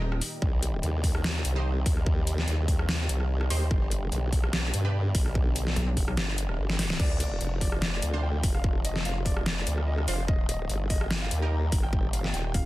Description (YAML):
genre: heavy wobble dubstep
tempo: 146 BPM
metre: 4/4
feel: swing 54% on 16ths, half-time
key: D phrygian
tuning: A4 = 441 Hz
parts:
  - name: supersaw chords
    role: sustained chords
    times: 0.0-12.7 s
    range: Bb2 to G4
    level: -38 LUFS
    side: equal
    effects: vintage 12-bit sampler grit, sidechain pumping, low-pass filter
  - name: pulsing pluck wobble bass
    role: bass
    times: 0.0-0.2, 5.8-6.2, 12.5-12.7 s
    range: Eb1 to B1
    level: -28 LUFS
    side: equal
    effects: chorus, overdrive
  - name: dubstep drum kit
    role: drums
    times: 0.1-12.6 s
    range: crash cymbal, hi-hat, rim click, snare drum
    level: -32 LUFS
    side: left 1 dB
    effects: overdrive
  - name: formant-sweep wobble bass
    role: bass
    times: 0.4-12.5 s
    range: Eb1 to G2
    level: -28 LUFS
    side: equal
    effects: chorus, overdrive
  - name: electronic kick drum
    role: drums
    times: 0.4-12.6 s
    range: none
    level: -27 LUFS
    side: equal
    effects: overdrive
  - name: orchestra-hit-like synth stab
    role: stabs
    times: 1.6-5.0, 8.1-11.6 s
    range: D4 to C5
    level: -39 LUFS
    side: right 4 dB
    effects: built-in reverb, tape echo
  - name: warm grand piano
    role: melody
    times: 7.0-12.7 s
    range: D5 to Bb5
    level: -38 LUFS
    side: left 1 dB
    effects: vintage 12-bit sampler grit, tape echo
room: little or no reverb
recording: dense, heavily limited modern master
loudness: -25 LUFS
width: side -17 dB against mid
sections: 0.0-12.7 A section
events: drum fill 6.7-7.0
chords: 0.4 Cm; 3.7 G; 7.0 Dm7; 10.3 Eb